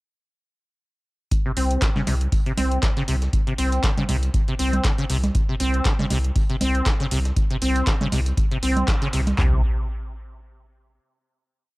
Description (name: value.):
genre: acid house.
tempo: 119 BPM.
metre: 4/4.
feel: swing 55% on 16ths.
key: unclear.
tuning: A4 = 440 Hz.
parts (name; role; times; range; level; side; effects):
booming analog drum machine; drums; 1.3-9.5 s; handclaps, kick drum, toms; -22 LUFS; equal; none.
booming analog drum machine; drums; 1.3-9.4 s; congas, handclaps, hi-hat; -28 LUFS; right 1 dB; none.
breakbeat sampler-style drum kit; drums; 1.3-9.4 s; hi-hat, snare drum; -36 LUFS; equal; none.
acid bass, saw; riff; 1.5-9.6 s; C3 to C4; -25 LUFS; equal; ensemble chorus, sidechain pumping, analog delay.
saturated sub bass; bass; 1.6-9.6 s; C2; -22 LUFS; equal; sidechain pumping.
room: digital ambience.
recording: dry, gritty hardware recording.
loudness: -19 LUFS.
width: side -21 dB against mid.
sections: 1.3-9.4 groove; 9.4-11.4 final note.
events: band accent 8.9.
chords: none.